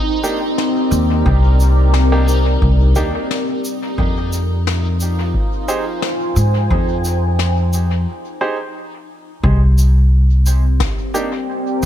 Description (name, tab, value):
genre	ambient dub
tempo	88 BPM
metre	4/4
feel	swing 54% on 16ths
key	C minor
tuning	A4 = 439 Hz
part	deep dark ambient pad	sustained chords	0.0-11.9 s	C4 to Ab5	-22 LUFS	left 1 dB	chorus, built-in reverb
part	backwards swelling texture	texture	0.0-8.1 s	Eb4	-27 LUFS	right 3 dB	built-in reverb
part	bright upright piano	stabs	0.2-11.3 s	Bb3 to C5	-24 LUFS	right 2 dB	dub echo
part	shaker and snare drum	drums	0.2-11.9 s	none	-26 LUFS	left 6 dB	dub echo
part	upright bass	bass	0.9-11.9 s	C2 to Ab2	-13 LUFS	equal	none
part	electronic kick drum	drums	1.3-10.9 s	none	-21 LUFS	equal	none
room	studio reverb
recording	echo-heavy mix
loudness	-14 LUFS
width	side -11 dB against mid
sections	0.0-9.4 A section; 9.4-11.9 B section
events	break 8.1-9.4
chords	0.0 Cm7; 4.0 Fm7; 9.4 C7(no3)